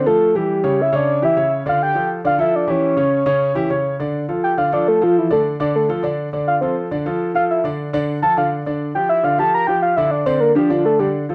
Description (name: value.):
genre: jazz.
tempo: 206 BPM.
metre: 4/4.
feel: straight.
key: D minor.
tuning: A4 = 439 Hz.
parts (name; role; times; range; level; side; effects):
soft octave-layered synth lead; melody; 0.0-11.1 s; D4 to Bb5; -19 LUFS; equal; chorus.
clear concert grand piano; accompaniment; 0.0-11.3 s; C#3 to D5; -23 LUFS; equal; none.
room: moderate studio reverb, RT60 0.8 s.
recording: dark, warm production.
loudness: -18 LUFS.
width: mono.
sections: 0.0-4.0 A section; 4.0-11.3 B section.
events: soft synth lead solo 4.0-11.3.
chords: 0.5 C#dim; 1.7 Dmadd9; 2.8 C#dim; 4.0 Dm; 8.7 G5.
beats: 0.20 | 0.49 0.78 1.07 1.37 | 1.66 1.95 2.24 2.53 | 2.83 3.12 3.41 3.70 | 3.99 4.28 4.58 4.87 | 5.16 5.45 5.74 6.04 | 6.33 6.62 6.91 7.20 | 7.49 7.79 8.08 8.37 | 8.66 8.95 9.24 9.54 | 9.83 10.12 10.41 10.70 | 10.99 11.29.